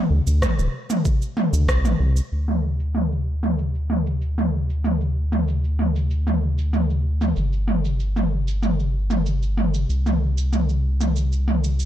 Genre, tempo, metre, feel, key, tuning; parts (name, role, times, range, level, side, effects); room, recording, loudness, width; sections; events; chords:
sunset chillout; 95 BPM; 4/4; straight; A4 = 444 Hz
round analog bass; bass; 0.1-11.9 s; D1 to D2; -21 LUFS; equal
deep house drum kit; drums; 0.3-11.9 s; cabasa, rim click, toms; -24 LUFS; equal; low-pass filter on perc, low-pass filter on toms, low-pass filter on snare, low-pass filter on room
electronic kick drum; drums; 0.4-1.8 s; -22 LUFS; equal
little or no reverb; dark, warm production; -19 LUFS; side -11 dB against mid
0.0-2.3 A section; 2.3-11.9 B section
filter sweep on drum 2.3-11.9